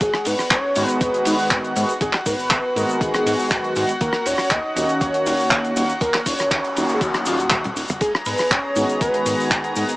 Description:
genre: nu-disco, nu disco.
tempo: 120 BPM.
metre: 4/4.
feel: straight.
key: G# minor.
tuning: A4 = 445 Hz.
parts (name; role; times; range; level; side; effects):
wide unison lead; melody; 0.0-9.7 s; F#4 to D#5; -23 LUFS; equal; tape echo.
dark studio string section; sustained chords; 0.0-10.0 s; F#4 to A#5; -28 LUFS; equal; sidechain pumping.
chorused synth bass; bass; 0.0-9.8 s; D#1 to G#2; -27 LUFS; equal; sidechain pumping.
damped 70s drum kit; drums; 0.0-10.0 s; handclaps, hi-hat, ride cymbal, rim click, toms; -23 LUFS; equal; none.
electronic kick drum; drums; 0.0-9.6 s; none; -25 LUFS; equal; overdrive.
egg shaker; percussion; 0.0-10.0 s; none; -34 LUFS; left 1 dB; none.
mellow synth brass; accompaniment; 0.8-9.9 s; D#3 to F#4; -24 LUFS; equal; chorus, sidechain pumping.
noise sweep; sound effects; 6.4-8.0 s; none; -29 LUFS; left 1 dB; none.
room: light reverb, small room reverb.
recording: small speaker sound.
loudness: -18 LUFS.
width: side -19 dB against mid.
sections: 0.0-10.0 A section.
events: noise sweep 6.4-8.0; drum fill 7.5-8.0.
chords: 0.0 G#m7; 4.0 D#m7; 8.0 G#m7.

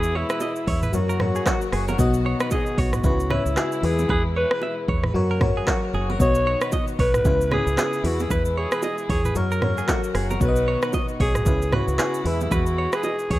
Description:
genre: afrobeats.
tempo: 114 BPM.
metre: 4/4.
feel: swing 58% on 16ths.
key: B major.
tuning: A4 = 440 Hz.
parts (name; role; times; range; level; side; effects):
growling alto saxophone; melody; 0.0-13.4 s; E4 to C#5; -26 LUFS; equal; none.
FM electric piano; accompaniment; 0.0-13.4 s; B2 to D#5; -28 LUFS; left 3 dB; chorus.
warm studio string section; sustained chords; 0.0-13.4 s; B2 to F#4; -34 LUFS; left 2 dB; none.
fingered electric bass; bass; 0.0-13.4 s; F#1 to F#2; -24 LUFS; equal; none.
afro-pop drum kit; drums; 0.0-13.4 s; handclaps, hi-hat, kick drum, rim click, shaker, toms; -25 LUFS; equal; none.
direct-recorded clean electric guitar; riff; 0.2-13.4 s; F#4 to E5; -32 LUFS; right 4 dB; digital delay.
bongos and congas; percussion; 0.4-13.2 s; none; -33 LUFS; right 4 dB; none.
room: little or no reverb.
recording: rough home demo mix.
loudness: -20 LUFS.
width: side -16 dB against mid.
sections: 0.0-13.4 A section.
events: hi-hats muted 4.1-6.2.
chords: 0.0 E; 0.9 F#; 2.0 B; 3.0 C#m7; 3.8 E; 5.1 F#; 6.2 B; 7.3 C#m7; 8.0 E; 9.4 F#; 10.4 B; 11.5 C#m7; 12.3 E.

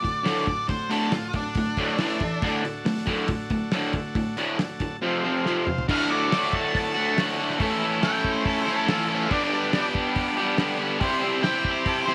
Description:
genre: garage rock duo or trio.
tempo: 140 BPM.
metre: 4/4.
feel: straight.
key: D major.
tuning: A4 = 440 Hz.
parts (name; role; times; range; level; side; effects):
octave-fuzz lead guitar; melody; 0.0-2.6, 5.9-12.1 s; D4 to A5; -30 LUFS; equal; distortion.
combo organ; sustained chords; 0.0-12.1 s; A3 to A5; -37 LUFS; equal; none.
crunchy overdriven guitar; riff; 0.0-12.1 s; D2 to C5; -27 LUFS; equal; none.
cloth-damped thuddy drum kit; drums; 0.0-12.1 s; crash cymbal, hi-hat, kick drum, snare drum, toms; -32 LUFS; equal; none.
room: light reverb.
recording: none.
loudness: -25 LUFS.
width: mono.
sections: 0.0-5.9 A section; 5.9-12.1 B section.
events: transistor combo organ fill 4.6-5.9; drum fill 5.4-5.9.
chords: 0.0 D; 2.0 A5; 2.4 D; 5.0 F5; 5.9 D; 7.6 A; 9.3 G; 11.0 C.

